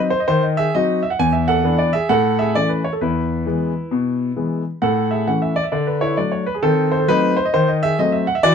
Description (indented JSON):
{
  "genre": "jazz, stride piano",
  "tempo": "132 BPM",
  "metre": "4/4",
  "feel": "swing 63% on 8ths",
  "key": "unclear",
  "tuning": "A4 = 439 Hz",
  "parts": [
    { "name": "clear concert grand piano", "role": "solo", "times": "0.0-8.5 s", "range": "E2 to G#5", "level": "-16 LUFS", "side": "equal", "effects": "none" }
  ],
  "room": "wet studio reverb, RT60 0.6 s",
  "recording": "dark, warm production",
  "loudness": "-16 LUFS",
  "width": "side -7 dB against mid",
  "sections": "0.0-8.5 A section",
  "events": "none",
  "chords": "0.0 D#m6; 1.2 E7; 2.1 A; 3.0 E; 4.8 A; 5.7 D; 6.6 D#dim7"
}